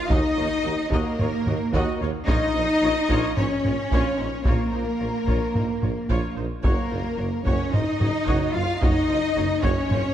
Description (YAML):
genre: cinematic, epic orchestral film score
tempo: 110 BPM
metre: 4/4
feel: straight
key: unclear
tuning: A4 = 440 Hz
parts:
  - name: warm symphonic violin section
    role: melody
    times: 0.0-10.1 s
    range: Bb4 to F5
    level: -34 LUFS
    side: left 3 dB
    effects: none
  - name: warm symphonic violin section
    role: second line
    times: 0.0-10.1 s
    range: Bb4 to F5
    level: -33 LUFS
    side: left 2 dB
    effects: none
  - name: mellow French horn section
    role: sustained chords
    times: 0.0-10.1 s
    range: Bb3 to F4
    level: -28 LUFS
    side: left 4 dB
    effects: none
  - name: rich symphonic cello section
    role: bass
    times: 0.0-10.1 s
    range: Bb3 to F4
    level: -28 LUFS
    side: right 2 dB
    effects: none
  - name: warm symphonic viola section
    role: accompaniment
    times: 0.1-10.0 s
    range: Eb4 to Eb5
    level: -33 LUFS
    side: equal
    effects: none
  - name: warm symphonic double bass section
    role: bass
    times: 0.1-10.0 s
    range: Gb1 to Eb2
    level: -30 LUFS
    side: right 3 dB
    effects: none
  - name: warm tuba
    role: bass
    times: 0.1-10.0 s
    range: Gb1 to Eb2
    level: -31 LUFS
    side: right 3 dB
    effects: none
  - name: solo taiko drums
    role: drums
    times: 0.1-10.1 s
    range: none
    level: -25 LUFS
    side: equal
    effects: none
room: moderate scoring stage reverb, RT60 1.6 s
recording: dark, warm production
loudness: -21 LUFS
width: side -11 dB against mid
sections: 0.0-10.1 A section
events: none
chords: 0.0 Ebm; 2.3 Bbm; 6.6 Gb